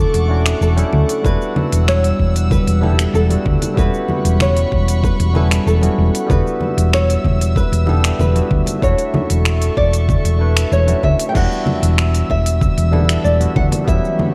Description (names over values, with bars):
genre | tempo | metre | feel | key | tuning
sunset chillout | 95 BPM | 4/4 | straight | E dorian | A4 = 437 Hz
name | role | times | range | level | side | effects
nylon-string guitar | melody | 0.0-14.3 s | G4 to G5 | -24 LUFS | equal | tape echo
barky tine electric piano | accompaniment | 0.0-14.3 s | F#3 to B4 | -25 LUFS | equal | tape echo
airy breathy pad | sustained chords | 0.0-14.3 s | E3 to E6 | -28 LUFS | equal | chorus
hollow-body short-scale fingered electric bass | bass | 0.0-14.0 s | E1 to D2 | -18 LUFS | equal | none
smooth R&B drum kit | drums | 0.1-14.2 s | congas, crash cymbal, finger snaps, hi-hat, shaker | -25 LUFS | equal | none
congas | percussion | 0.8-14.3 s | none | -27 LUFS | equal | none
electronic kick drum | drums | 1.2-14.0 s | none | -21 LUFS | equal | overdrive
room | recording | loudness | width
light reverb, digital ambience | dark, warm production | -16 LUFS | mono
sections
0.0-14.3 A section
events
none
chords
0.0 Dmaj7/E; 1.2 Em9; 3.8 A13/E; 6.3 Em9; 8.8 Dmaj7/E; 11.3 Em9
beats
0.61 | 1.24 1.87 2.51 3.14 | 3.77 4.40 5.03 5.66 | 6.29 6.93 7.56 8.19 | 8.82 9.45 10.09 10.72 | 11.35 11.98 12.61 13.24 | 13.87